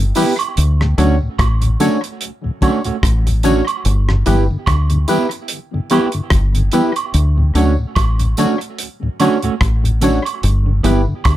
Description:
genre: roots reggae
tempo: 73 BPM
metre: 4/4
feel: swing 57% on 16ths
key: D major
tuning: A4 = 440 Hz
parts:
  - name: mellow tonewheel organ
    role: accompaniment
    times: 0.0-11.1 s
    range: D2 to C#4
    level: -22 LUFS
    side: left 2 dB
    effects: chorus vibrato, stopped rotary speaker, analog delay
  - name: deep dub fingered electric bass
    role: bass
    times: 0.0-11.4 s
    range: G1 to D2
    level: -14 LUFS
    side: equal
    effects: none
  - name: damped 70s drum kit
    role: drums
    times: 0.1-11.4 s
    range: hi-hat, kick drum, rim click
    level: -20 LUFS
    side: equal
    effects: analog delay
  - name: mellow electric guitar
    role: accompaniment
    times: 0.2-11.0 s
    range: A3 to G4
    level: -21 LUFS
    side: right 7 dB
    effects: wide subtle chorus, dub echo
  - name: percussive organ stab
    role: stabs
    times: 0.2-11.1 s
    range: D4 to C#5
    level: -19 LUFS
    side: left 4 dB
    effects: chorus
  - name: tambourine and woodblock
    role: percussion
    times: 0.2-11.4 s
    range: none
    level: -25 LUFS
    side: right 6 dB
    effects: none
room: little or no reverb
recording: none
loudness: -13 LUFS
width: side -14 dB against mid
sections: 0.0-11.4 A section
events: none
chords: 0.0 G6; 0.6 Dmaj7; 3.9 G6; 7.1 Dmaj7; 10.4 G6

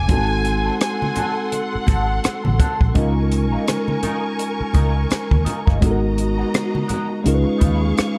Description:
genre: lush 1970s-style soul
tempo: 84 BPM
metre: 4/4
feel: swing 58% on 16ths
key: unclear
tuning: A4 = 441 Hz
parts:
  - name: dark studio violin section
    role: melody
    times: 0.0-2.6 s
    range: Gb5 to Ab5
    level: -28 LUFS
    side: equal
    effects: none
  - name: warm studio string section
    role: second line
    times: 0.0-8.2 s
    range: Gb4 to Db6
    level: -30 LUFS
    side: equal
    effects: none
  - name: mellow tine electric piano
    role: accompaniment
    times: 0.0-8.2 s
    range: Ab3 to Cb5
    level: -25 LUFS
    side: equal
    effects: none
  - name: vintage muted fingered electric bass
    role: bass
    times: 0.0-8.0 s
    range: G1 to Eb2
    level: -23 LUFS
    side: equal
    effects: none
  - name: electric guitar through a small old amp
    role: riff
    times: 0.1-8.2 s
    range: Cb4 to Cb5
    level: -33 LUFS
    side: equal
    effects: wah
  - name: compact cocktail drum kit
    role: drums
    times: 0.1-8.2 s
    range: hi-hat, kick drum, rim click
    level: -22 LUFS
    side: equal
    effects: none
  - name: congas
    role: percussion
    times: 0.1-7.8 s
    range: none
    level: -31 LUFS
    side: equal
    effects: none
room: light reverb, studio ambience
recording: dark, warm production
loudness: -19 LUFS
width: mono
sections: 0.0-8.2 A section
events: none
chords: 0.1 Ab7b9; 3.0 Db69; 5.8 Abm9; 7.3 Db9

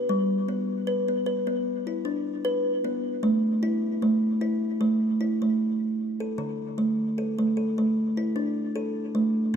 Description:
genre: world meditative, meditative tuned percussion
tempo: 76 BPM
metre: 4/4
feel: swing 53% on 16ths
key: unclear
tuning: A4 = 440 Hz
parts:
  - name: kalimba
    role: solo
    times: 0.0-9.6 s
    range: D3 to B4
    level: -24 LUFS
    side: equal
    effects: diffuse ambient delay
room: moderate echo chamber reverb, RT60 2.1 s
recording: dark, warm production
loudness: -24 LUFS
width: side -7 dB against mid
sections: 0.0-9.6 A section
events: none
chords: 0.1 G; 3.2 A5; 6.4 D5

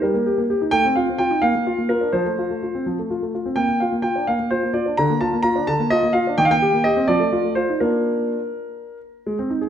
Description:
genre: classical-period piano sonatina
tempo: 84 BPM (dotted quarters)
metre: 6/8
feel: straight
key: Bb major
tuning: A4 = 445 Hz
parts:
  - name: warm grand piano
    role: solo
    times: 0.0-9.7 s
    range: D3 to Bb5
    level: -18 LUFS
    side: equal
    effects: none
room: moderate recital hall reverb, RT60 1.5 s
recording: none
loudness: -18 LUFS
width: side -9 dB against mid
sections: 0.0-9.3 A section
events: none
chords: 0.0 Eb/G; 0.7 F7/A; 1.4 Bb; 2.1 F; 3.6 Bb; 5.0 Bb/D; 6.4 Cm7/Eb; 7.1 F7; 7.8 Bb

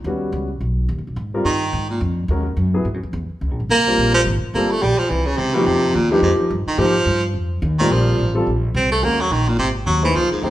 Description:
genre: jazz, small-group swing and bop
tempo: 214 BPM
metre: 4/4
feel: swing 59% on 8ths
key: F minor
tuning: A4 = 439 Hz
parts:
  - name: upright bass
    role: bass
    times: 0.0-10.5 s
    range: G1 to Ab2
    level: -21 LUFS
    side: equal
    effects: none
  - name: warm grand piano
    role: accompaniment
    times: 0.1-10.5 s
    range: Bb2 to C5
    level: -21 LUFS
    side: left 1 dB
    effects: none
  - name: edgy baritone saxophone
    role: second line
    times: 1.5-10.5 s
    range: G2 to C4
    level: -18 LUFS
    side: right 1 dB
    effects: none
room: wet large studio reverb, RT60 1.1 s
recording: band playing live in one room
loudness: -16 LUFS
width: side -14 dB against mid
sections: 0.0-7.9 A section; 7.9-10.5 A section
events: baritone saxophone solo 0.0-10.5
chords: 0.1 Eb7alt; 1.2 Abmaj7(no3); 2.3 Ebm7; 2.9 Eadd9; 3.4 Db6 (rootless); 4.5 Gm9; 5.1 C5; 5.7 Fm7; 7.3 F5; 7.9 Bbsus2; 9.0 Ebm7; 9.6 Abadd9

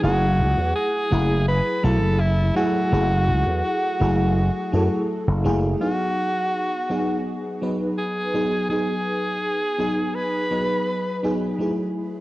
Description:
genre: vaporwave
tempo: 83 BPM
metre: 4/4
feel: straight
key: unclear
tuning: A4 = 440 Hz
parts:
  - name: edgy alto saxophone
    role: melody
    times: 0.0-11.2 s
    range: E4 to B4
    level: -25 LUFS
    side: equal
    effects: tape echo
  - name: FM electric piano with soft pad layer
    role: accompaniment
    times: 0.0-12.2 s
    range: F#3 to B4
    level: -24 LUFS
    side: equal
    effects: ensemble chorus
  - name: slap bass with an envelope filter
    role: bass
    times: 0.0-5.7 s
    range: F#1 to F#2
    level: -20 LUFS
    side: equal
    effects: tube saturation
room: light reverb, studio reverb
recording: worn, warbling old tape, cassette tape, warbly pitch drift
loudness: -20 LUFS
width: side -17 dB against mid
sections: 0.0-5.8 A section; 5.8-12.2 B section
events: none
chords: 0.0 F#m9; 5.8 G#m7; 11.6 F#m9

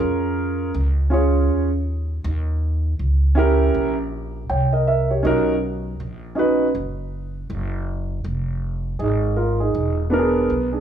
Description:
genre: hip hop, jazz-hop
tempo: 80 BPM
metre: 4/4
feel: swing 62% on 16ths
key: Eb minor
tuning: A4 = 440 Hz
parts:
  - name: dark concert grand piano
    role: accompaniment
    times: 0.0-10.8 s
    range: B3 to G5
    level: -20 LUFS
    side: right 2 dB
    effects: none
  - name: upright bass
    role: bass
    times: 0.0-10.8 s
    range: E1 to F2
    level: -22 LUFS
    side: equal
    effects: none
room: light reverb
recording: small room ambience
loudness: -18 LUFS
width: side -9 dB against mid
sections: 0.0-10.8 A section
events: none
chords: 0.0 Bbm7; 2.2 Eb7b9; 5.2 Bmaj7; 8.2 Fm7; 9.7 E7#11

